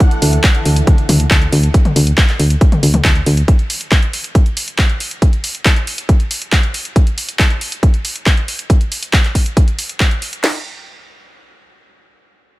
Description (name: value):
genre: uplifting trance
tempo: 138 BPM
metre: 4/4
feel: straight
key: unclear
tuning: A4 = 439 Hz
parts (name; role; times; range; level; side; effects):
- lush unison pad; sustained chords; 0.0-3.4 s; D3 to A4; -26 LUFS; equal; chorus, sidechain pumping
- house drum kit; drums; 0.0-10.5 s; crash cymbal, kick drum, snare drum; -12 LUFS; equal; none
- punchy analog drum machine; drums; 0.0-10.4 s; handclaps, hi-hat, toms; -18 LUFS; equal; overdrive
- solid FM bass; bass; 0.2-3.4 s; D2; -12 LUFS; equal; tube saturation, sidechain pumping
room: little or no reverb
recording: none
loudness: -12 LUFS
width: side -19 dB against mid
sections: 0.0-10.4 A section; 10.4-12.6 B section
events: none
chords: 0.0 Dsus2; 3.5 N.C.